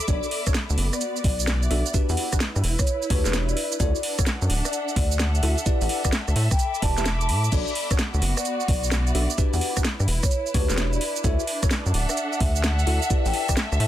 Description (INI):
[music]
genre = UK garage, two-step garage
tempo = 129 BPM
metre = 4/4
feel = swing 66% on 16ths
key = B minor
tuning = A4 = 441 Hz
[part]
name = garage drum kit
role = drums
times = 0.0-13.9 s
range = crash cymbal, hi-hat, rim click, shaker, snare drum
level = -28 LUFS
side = right 1 dB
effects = none
[part]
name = muted studio string section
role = texture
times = 0.0-13.9 s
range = B3 to D6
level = -31 LUFS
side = equal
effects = sidechain pumping
[part]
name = vibraphone with soft mallets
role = melody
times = 0.1-13.5 s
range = B4 to A5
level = -31 LUFS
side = left 2 dB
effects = none
[part]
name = tine electric piano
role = stabs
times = 0.1-13.6 s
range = D4 to E5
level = -31 LUFS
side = equal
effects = overdrive, phaser, tape echo
[part]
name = rubbery square bass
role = bass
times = 0.1-13.9 s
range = D1 to A2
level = -23 LUFS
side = equal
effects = none
[part]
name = electronic kick drum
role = drums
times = 0.1-13.6 s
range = none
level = -24 LUFS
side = equal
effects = none
[sound]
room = light reverb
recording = dense, heavily limited modern master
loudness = -21 LUFS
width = side -12 dB against mid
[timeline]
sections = 0.0-13.9 A section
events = kick drops out 7.1-7.5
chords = 0.1 Bm9; 1.9 Em7; 3.6 Dadd9; 5.7 A7sus4; 7.5 Bm9; 9.4 Em7; 11.0 Dadd9; 13.1 A7sus4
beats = | 0.08 0.55 1.01 1.48 | 1.94 2.40 2.87 3.33 | 3.80 4.26 4.73 5.20 | 5.66 6.13 6.59 7.06 | 7.52 7.99 8.45 8.92 | 9.38 9.85 10.31 10.78 | 11.24 11.71 12.17 12.64 | 13.10 13.57